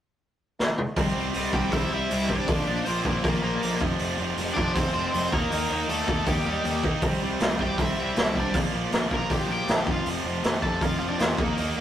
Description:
punk rock; 158 BPM; 4/4; straight; A4 = 440 Hz
raw garage drum kit; drums; 0.6-11.7 s; hi-hat, kick drum, snare drum, toms; -26 LUFS; equal
distorted electric guitar; riff; 1.0-11.8 s; F2 to Eb4; -32 LUFS; left 4 dB; distortion
tight distorted guitar; riff; 1.0-11.8 s; F2 to Eb4; -31 LUFS; right 5 dB; distortion
fuzz picked electric bass; bass; 1.0-11.8 s; F1 to E2; -32 LUFS; equal; overdrive
cranked stack guitar; melody; 1.5-11.8 s; G3 to Bb5; -29 LUFS; left 1 dB; overdrive
light reverb; rough rehearsal-room recording; -23 LUFS; side -11 dB against mid
1.0-11.8 A section
drum fill 0.6-1.0
0.0 N.C.; 1.0 C; 2.5 Bb; 3.8 F5; 5.3 Eb; 7.0 C; 8.6 Bb5; 9.9 F
0.20 0.58 | 0.96 1.34 1.72 2.10 | 2.48 2.86 3.24 3.62 | 4.00 4.38 4.76 5.14 | 5.51 5.89 6.27 6.65 | 7.03 7.41 7.79 8.17 | 8.55 8.93 9.31 9.69 | 10.07 10.45 10.82 11.21 | 11.58

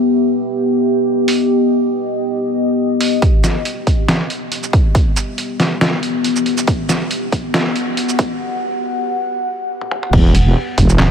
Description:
deep dubstep; 139 BPM; 4/4; swing 54% on 16ths, half-time; E harmonic minor; A4 = 439 Hz
deep dark ambient pad; sustained chords; 0.0-10.1 s; B3 to F#5; -17 LUFS; left 1 dB; chorus, built-in reverb, vintage 12-bit sampler grit
trip hop sampler-style drum kit; drums; 1.3-11.1 s; crash cymbal, handclaps, hi-hat, shaker, snare drum, toms; -19 LUFS; right 1 dB
electronic kick drum; drums; 3.2-10.9 s; -14 LUFS; equal
wobble bass; bass; 10.1-11.1 s; E1; -12 LUFS; equal; chorus
moderate huge ambient reverb, RT60 5.1 s; high-pass filter; -14 LUFS; side -7 dB against mid
0.0-3.2 A section; 3.2-10.1 B section
filter sweep on ambient pad 0.0-3.2, 3.2-10.1; build-up 3.2-10.1; filter sweep 3.2-10.1; break 8.4-10.1; drum fill 9.8-10.1
0.0 Em (rootless); 3.2 Em; 10.1 N.C.
0.20 0.63 1.06 | 1.50 1.93 2.36 2.79 | 3.22 3.65 4.09 4.52 | 4.95 5.38 5.81 6.25 | 6.68 7.11 7.54 7.97 | 8.40 8.84 9.27 9.70 | 10.13 10.56 10.99

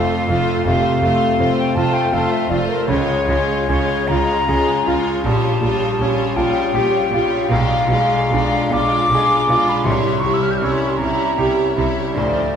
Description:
classical, romantic movement for piano and orchestra; 47-55 BPM (dotted quarters); 12/8; rubato; A4 = 440 Hz
clear chamber violin section; melody; 0.0-12.5 s; C5 to D5; -31 LUFS; left 6 dB
clear concert grand piano; melody; 0.0-12.6 s; Bb1 to A4; -19 LUFS; left 1 dB
clear studio violin section; second line; 0.0-12.6 s; D4 to F4; -27 LUFS; left 1 dB
concert flute; second line; 0.0-12.6 s; Bb4 to G6; -20 LUFS; left 1 dB
rich studio viola section; accompaniment; 0.0-12.6 s; F3 to A3; -25 LUFS; right 2 dB
clear chamber cello section; bass; 0.3-12.2 s; F2 to D3; -26 LUFS; right 2 dB
rich chamber double bass section; bass; 0.3-12.2 s; F1 to D2; -26 LUFS; right 3 dB
timpani; percussion; 9.9-11.0 s; C3; -32 LUFS; right 1 dB
wet scoring stage reverb, RT60 2.0 s; heard from further back in the room; -15 LUFS; side -8 dB against mid
0.0-12.6 A section
0.0 F; 2.9 Db; 5.3 Gm7b5/Bb; 7.5 Bdim7; 9.9 C7b9
0.67 1.78 | 2.89 4.10 5.25 6.37 | 7.50 8.73 9.86 11.00 | 12.16

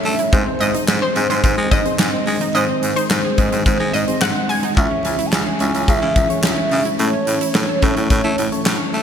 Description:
synth-pop; 108 BPM; 4/4; straight; A4 = 439 Hz
hollow clarinet-like synth lead; melody; 0.0-8.6 s; B#4 to A5; -23 LUFS; right 2 dB; chorus, ping-pong delay
soft electric-piano-like synth keys; accompaniment; 0.0-9.0 s; B#3 to E5; -26 LUFS; left 3 dB; chorus
string machine, violas; sustained chords; 0.0-9.0 s; D#3 to C#4; -25 LUFS; equal; ensemble chorus
analog pluck; arpeggios; 0.0-9.0 s; G#3 to A4; -27 LUFS; right 4 dB; chorus, ping-pong delay
growling baritone saxophone; bass; 0.1-9.0 s; C#2 to A3; -22 LUFS; equal
huge arena drum kit; drums; 0.1-9.0 s; handclaps, hi-hat, kick drum, snare drum; -20 LUFS; equal; gated reverb
analog pluck; second line; 0.6-4.6 s; B#4 to G#5; -24 LUFS; equal; chorus, ping-pong delay
moderate lush hall reverb, RT60 2.1 s; bright 1980s-style digital production; -15 LUFS; side -8 dB against mid
0.0-9.0 A section
0.3 G#; 4.8 C#m; 7.0 A
| 0.33 0.88 1.44 1.99 | 2.55 3.10 3.66 4.22 | 4.77 5.33 5.88 6.44 | 6.99 7.55 8.11 8.66

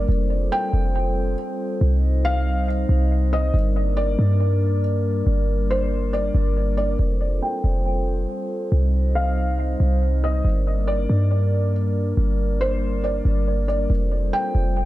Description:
hip hop, atmospheric cloud-rap; 139 BPM; 4/4; half-time; G minor; A4 = 441 Hz
felt-muted upright piano; melody; 0.0-14.9 s; C5 to G5; -28 LUFS; equal; low-pass filter, analog delay
glass harmonica; sustained chords; 0.0-14.9 s; G3 to Eb5; -26 LUFS; left 1 dB; low-pass filter
clean 808-style bass; bass; 0.0-14.9 s; F1 to G2; -20 LUFS; equal
light reverb, small room ambience; echo-heavy mix; -19 LUFS; side -16 dB against mid
0.0-7.0 A section; 7.0-13.9 B section
filter sweep 7.0-13.9
0.1 Fadd9; 1.8 Cm; 3.5 Gm; 7.0 Fadd9; 8.7 Cm; 10.4 Gm; 13.9 Fadd9
| 0.09 0.52 0.95 1.38 | 1.81 2.25 2.68 3.11 | 3.54 3.97 4.40 4.84 | 5.27 5.70 6.13 6.56 | 6.99 7.42 7.86 8.29 | 8.72 9.15 9.58 10.02 | 10.45 10.88 11.31 11.74 | 12.17 12.61 13.04 13.47 | 13.90 14.33 14.76

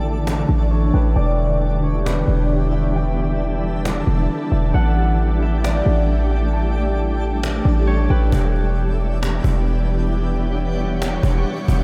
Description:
hip hop, atmospheric cloud-rap; 134 BPM; 4/4; half-time; E dorian; A4 = 440 Hz
concert harp; melody; 0.0-10.2 s; B4 to F#5; -32 LUFS; equal; low-pass filter, delay
shimmering ambient pad; sustained chords; 0.0-11.8 s; D3 to C#5; -26 LUFS; equal; chorus, built-in reverb, low-pass filter
mellow electric guitar; arpeggios; 0.0-8.3 s; D4 to A5; -33 LUFS; equal; lush chorus, low-pass filter, delay
warm 808-style bass; bass; 0.0-11.8 s; E1 to A1; -21 LUFS; equal
twinkling granular texture; texture; 0.0-11.8 s; F#3 to F#5; -34 LUFS; equal; built-in reverb, subtle chorus
cajon; drums; 0.3-11.8 s; -33 LUFS; equal
moderate huge ambient reverb, RT60 7.4 s; dreamy mix soaked in reverb; -19 LUFS; mono
0.0-8.3 A section; 8.3-11.8 B section
filter sweep 0.0-8.3
0.0 A7sus4; 1.2 Em7; 4.7 A7sus4; 8.3 Em7
0.27 0.71 | 1.16 1.61 2.06 2.50 | 2.95 3.40 3.85 4.29 | 4.74 5.19 5.64 6.09 | 6.53 6.98 7.43 7.88 | 8.32 8.77 9.22 9.67 | 10.12 10.56 11.01 11.46

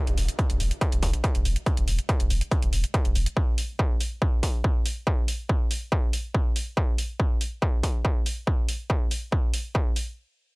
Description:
driving peak-time techno; 141 BPM; 4/4; straight; A4 = 440 Hz
saturated sub bass; bass; 0.1-3.3 s; E1; -26 LUFS; equal; overdrive, sidechain pumping, low-pass filter
electronic hi-hat; drums; 0.1-10.0 s; -33 LUFS; right 1 dB; overdrive, sidechain pumping on hats, sidechain pumping on cymbals
electronic kick drum; drums; 0.4-9.8 s; -24 LUFS; equal; distortion, overdrive
digital ambience; -23 LUFS; side -29 dB against mid
0.0-10.2 A section
0.39 0.81 1.24 | 1.66 2.09 2.52 2.94 | 3.37 3.79 4.22 4.64 | 5.07 5.49 5.92 6.34 | 6.77 7.20 7.62 8.05 | 8.47 8.90 9.32 9.75

